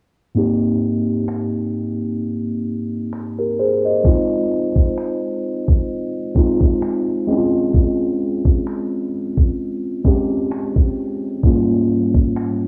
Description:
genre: contemporary R&B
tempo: 65 BPM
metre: 4/4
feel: swing 54% on 16ths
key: Ab major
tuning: A4 = 439 Hz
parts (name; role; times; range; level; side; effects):
- mellow tine electric piano; accompaniment; 0.3-12.7 s; Ab2 to Eb5; -21 LUFS; equal; none
- smooth R&B drum kit; drums; 1.3-12.6 s; finger snaps, kick drum; -18 LUFS; equal; soft clipping on snare
room: light reverb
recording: blown-out, overdriven recording, overdrive, low-pass filter, small room ambience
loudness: -19 LUFS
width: mono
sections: 0.4-12.7 A section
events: none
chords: 0.4 Abmaj9; 4.0 Ab6; 7.3 Dbmaj7#11/Ab; 11.4 Abmaj7sus2

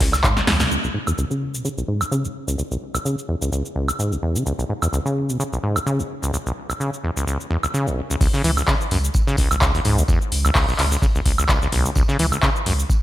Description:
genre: acid house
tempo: 128 BPM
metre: 4/4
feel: swing 55% on 16ths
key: C# minor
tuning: A4 = 440 Hz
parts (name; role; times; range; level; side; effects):
- acid bass, saw; riff; 0.0-12.7 s; B1 to E3; -22 LUFS; equal; tube saturation, ping-pong delay
- warm sub bass; bass; 0.0-0.7, 8.4-12.8 s; C#2; -23 LUFS; equal; sidechain pumping
- crunchy breakbeat drum kit; drums; 0.0-0.7, 8.2-13.0 s; hi-hat, snare drum, tambourine; -34 LUFS; equal; sidechain pumping on hats, high-pass filter on hats, high-pass filter on snare, sidechain pumping on perc, high-pass filter on perc, high-pass filter on room
- electro analog drum machine; drums; 0.0-13.0 s; crash cymbal, handclaps, hi-hat, shaker, snare drum, woodblock; -23 LUFS; equal; none
- electronic kick drum; drums; 0.0-0.3, 8.2-13.0 s; none; -20 LUFS; equal; none
room: light reverb, small room ambience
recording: none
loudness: -18 LUFS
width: side -14 dB against mid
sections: 0.7-8.2 A section; 8.2-13.0 B section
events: drum fill 0.4-0.7; band accent 0.6; filter sweep on acid bass 0.7-8.2; drop 8.2-13.0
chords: 0.0 C#5

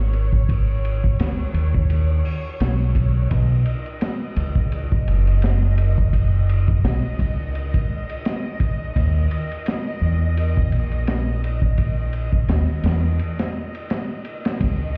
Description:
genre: trip hop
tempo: 85 BPM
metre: 4/4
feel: swing 56% on 16ths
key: unclear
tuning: A4 = 440 Hz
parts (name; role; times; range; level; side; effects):
- dark studio violin section; sustained chords; 0.0-15.0 s; C#5 to D#5; -37 LUFS; equal; none
- deep dub fingered electric bass; bass; 0.0-14.9 s; F#1 to E2; -21 LUFS; equal; none
- crunchy breakbeat drum kit; drums; 0.1-14.8 s; hi-hat, kick drum, ride cymbal, snare drum; -26 LUFS; equal; none
room: small room ambience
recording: heard muffled through a wall, club reverb, EQ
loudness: -21 LUFS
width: mono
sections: 0.0-14.6 A section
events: break 13.2-14.6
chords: 0.0 C#5; 3.3 B (rootless); 9.0 D#5

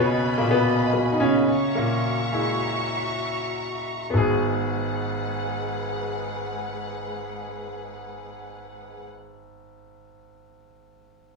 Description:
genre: pop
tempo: 95-112 BPM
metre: 4/4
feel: straight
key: G# minor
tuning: A4 = 440 Hz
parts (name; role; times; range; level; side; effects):
- clear concert grand piano; accompaniment; 0.0-11.4 s; G#1 to G#4; -24 LUFS; equal; none
- dark studio string section; sustained chords; 0.0-9.0 s; G#3 to C#6; -29 LUFS; equal; none
room: wet large studio reverb, RT60 0.9 s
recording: band playing live in one room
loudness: -22 LUFS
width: side -3 dB against mid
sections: 0.0-4.1 A section; 4.1-9.2 B section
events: slowing down 0.0-4.1; grand piano solo 0.0-4.1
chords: 0.0 G#m7; 1.5 F#7; 4.1 G#m7

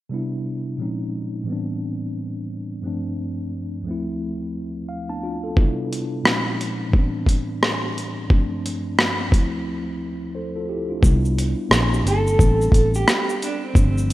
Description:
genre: lo-fi hip hop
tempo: 88 BPM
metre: 4/4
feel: swing 60% on 16ths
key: C major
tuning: A4 = 440 Hz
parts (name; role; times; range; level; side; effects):
- mellow tine electric piano; accompaniment; 0.1-14.1 s; D2 to A5; -26 LUFS; equal; medium stereo tremolo, cassette tape, low-pass filter
- boom bap sampler-style drum kit; drums; 5.6-14.1 s; hi-hat, kick drum, rim click, shaker; -18 LUFS; equal; none
- vintage muted fingered electric bass; bass; 11.0-14.1 s; G1 to C2; -20 LUFS; equal; none
- electric guitar through a small old amp; melody; 12.1-14.1 s; C4 to A4; -22 LUFS; right 2 dB; tremolo, low-pass filter, tape echo
room: light reverb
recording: rough home demo mix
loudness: -20 LUFS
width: side -16 dB against mid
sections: 0.1-11.0 A section; 11.0-14.1 B section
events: tine electric piano fill 4.5-5.6; break 9.7-11.0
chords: 0.1 Cmaj7; 0.8 Bbm11; 1.5 Am11; 2.8 G9sus4; 3.9 Dm7; 5.6 Cmaj7; 6.2 Bbm11; 6.9 Am11; 8.3 G9sus4; 9.3 Dm7; 11.0 Cmaj7; 11.7 Bbmadd9; 12.4 Am11

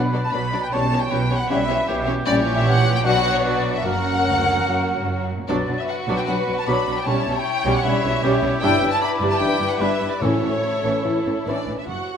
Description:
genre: classical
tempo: 143-157 BPM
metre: 4/4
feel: rubato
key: B minor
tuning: A4 = 441 Hz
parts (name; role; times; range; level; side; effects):
- warm cor anglais; second line; 0.0-11.7 s; F#4 to E5; -28 LUFS; right 1 dB; none
- mellow French horn section; sustained chords; 0.0-11.2 s; E3 to E4; -27 LUFS; left 3 dB; none
- warm symphonic cello section; bass; 0.0-12.0 s; D2 to B2; -28 LUFS; right 2 dB; none
- warm symphonic double bass section; bass; 0.0-12.0 s; F#1 to B1; -27 LUFS; right 3 dB; none
- warm symphonic violin section; second line; 0.1-12.2 s; D4 to F#5; -28 LUFS; left 3 dB; none
- dark symphonic viola section; accompaniment; 0.1-12.2 s; E3 to F#4; -26 LUFS; right 1 dB; none
- warm symphonic violin section; melody; 0.2-12.2 s; C#5 to B5; -26 LUFS; left 4 dB; none
- mellow small flute group; second line; 0.2-11.4 s; C#5 to B5; -27 LUFS; left 2 dB; none
- timpani; percussion; 10.2-10.8 s; A2; -30 LUFS; right 1 dB; none
room: wet scoring stage reverb, RT60 2.0 s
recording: none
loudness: -18 LUFS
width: side -7 dB against mid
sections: 0.0-11.9 A section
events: none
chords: 0.0 Bm; 0.7 C#m7b5/B; 2.3 A#dim7; 3.0 Bm; 3.8 F#; 5.5 Bm; 7.1 C#m7b5/B; 8.6 Em7/G; 10.2 A

